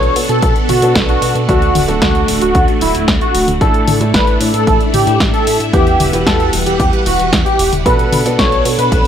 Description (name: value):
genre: italo disco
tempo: 113 BPM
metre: 4/4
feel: straight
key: D major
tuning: A4 = 438 Hz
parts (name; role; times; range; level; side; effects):
- wide unison lead; melody; 0.0-9.0 s; E4 to C#5; -15 LUFS; equal; analog chorus, ping-pong delay
- phased string machine; sustained chords; 0.0-9.1 s; E3 to F#5; -20 LUFS; equal; ensemble chorus, phaser
- dark concert grand piano; stabs; 0.0-9.1 s; A3 to F#5; -20 LUFS; right 1 dB; low-pass filter
- chorused synth bass; bass; 0.0-9.0 s; D1 to B2; -18 LUFS; equal; none
- house drum kit; drums; 0.0-9.1 s; hi-hat, snare drum, toms; -18 LUFS; left 1 dB; small room reverb
- electronic kick drum; drums; 0.4-9.0 s; none; -16 LUFS; equal; small room reverb
room: light reverb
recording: none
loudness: -10 LUFS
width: side -9 dB against mid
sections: 0.0-9.1 A section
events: none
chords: 0.0 Bm7; 1.5 D; 3.6 Asus4; 5.7 Emadd9; 7.9 Bm7